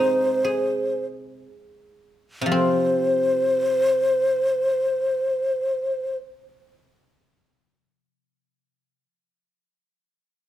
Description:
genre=chinese traditional, Chinese chamber ensemble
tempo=free time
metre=none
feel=none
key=C jue mode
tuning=A4 = 441 Hz
part: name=breathy xiao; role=melody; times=0.0-6.2 s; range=C5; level=-20 LUFS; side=left 1 dB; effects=none
part: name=guzheng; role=accompaniment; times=0.0-9.0 s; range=C3 to Ab4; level=-25 LUFS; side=right 1 dB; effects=none
room=light reverb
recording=close, detailed microphones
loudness=-20 LUFS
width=side -12 dB against mid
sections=0.0-2.5 A section; 2.5-6.1 B section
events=slowing down 0.0-2.5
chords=none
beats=free time

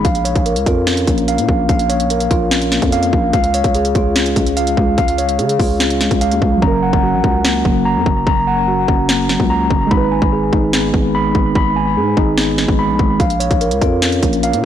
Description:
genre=hip hop, trap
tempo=146 BPM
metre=4/4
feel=half-time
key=F# major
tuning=A4 = 440 Hz
part: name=mellow tine electric piano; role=arpeggios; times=0.0-14.7 s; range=F#3 to B5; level=-16 LUFS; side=left 1 dB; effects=medium stereo tremolo, ping-pong delay
part: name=growling 808-style bass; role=bass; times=0.0-14.6 s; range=F#1 to C#3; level=-20 LUFS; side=equal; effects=none
part: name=trap drum kit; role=drums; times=0.0-14.6 s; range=hi-hat, kick drum, snare drum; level=-17 LUFS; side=equal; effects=none
part: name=muted felt-like synth keys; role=accompaniment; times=6.6-13.2 s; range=F#3 to B4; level=-21 LUFS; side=right 5 dB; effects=chorus
room=light reverb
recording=blown-out, overdriven recording, overdrive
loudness=-12 LUFS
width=side -10 dB against mid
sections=0.0-14.7 A section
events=hi-hats muted 6.6-13.2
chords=0.0 A#m; 3.3 C#; 6.6 F#; 9.9 G#m; 13.2 A#m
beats=| 0.05 0.46 0.87 1.28 | 1.69 2.10 2.51 2.92 | 3.33 3.75 4.16 4.57 | 4.98 5.39 5.80 6.21 | 6.62 7.03 7.45 7.86 | 8.27 8.68 9.09 9.50 | 9.91 10.32 10.73 11.14 | 11.55 11.96 12.38 12.79 | 13.20 13.61 14.02 14.43

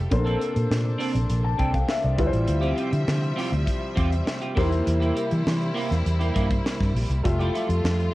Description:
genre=polished 1980s jazz-funk pop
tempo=101 BPM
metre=4/4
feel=straight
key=unclear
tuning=A4 = 440 Hz
part: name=warm concert grand piano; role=accompaniment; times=0.0-8.1 s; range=G3 to A5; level=-28 LUFS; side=left 2 dB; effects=analog chorus, cassette tape, plate reverb
part: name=clear studio string section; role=sustained chords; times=0.0-8.1 s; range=C3 to E5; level=-32 LUFS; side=equal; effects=cassette tape, plate reverb
part: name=vintage muted fingered electric bass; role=bass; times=0.0-8.1 s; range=F1 to E3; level=-23 LUFS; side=equal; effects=none
part: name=clean electric guitar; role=riff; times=0.1-8.0 s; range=A3 to A4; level=-30 LUFS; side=right 3 dB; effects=analog chorus, cassette tape
part: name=crisp fusion drum kit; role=drums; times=0.1-8.1 s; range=crash cymbal, hi-hat, kick drum, snare drum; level=-28 LUFS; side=equal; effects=cassette tape
room=light reverb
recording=home recording on cassette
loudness=-21 LUFS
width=side -17 dB against mid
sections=0.0-8.1 A section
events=none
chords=0.1 Bbmaj9; 2.2 Dm11; 4.6 C7/E; 7.2 Fmaj9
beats=| 0.11 0.71 1.30 1.90 | 2.49 3.08 3.68 4.27 | 4.87 5.46 6.06 6.65 | 7.25 7.84

